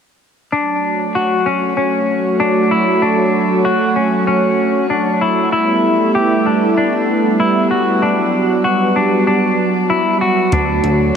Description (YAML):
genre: dream pop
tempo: 96 BPM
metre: 4/4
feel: straight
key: unclear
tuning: A4 = 440 Hz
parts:
  - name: lush unison pad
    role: sustained chords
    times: 0.5-11.2 s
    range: F#3 to C#5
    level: -15 LUFS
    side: right 1 dB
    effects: chorus, shimmer reverb
  - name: clean electric guitar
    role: arpeggios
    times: 0.5-11.2 s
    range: C#4 to G4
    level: -16 LUFS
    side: left 2 dB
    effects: wide subtle chorus, tape echo, shimmer reverb
  - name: chorused synth bass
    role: bass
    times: 10.5-11.1 s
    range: D2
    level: -19 LUFS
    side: equal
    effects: none
  - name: soft vintage rhythm box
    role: drums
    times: 10.5-11.0 s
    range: hi-hat, kick drum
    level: -19 LUFS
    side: equal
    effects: none
room: wet huge ambient reverb, RT60 4.8 s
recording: none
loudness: -13 LUFS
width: side -7 dB against mid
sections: 0.5-11.2 A section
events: none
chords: 0.5 Dmaj7; 5.5 A9sus4; 8.0 Gmaj7; 10.5 Dmaj7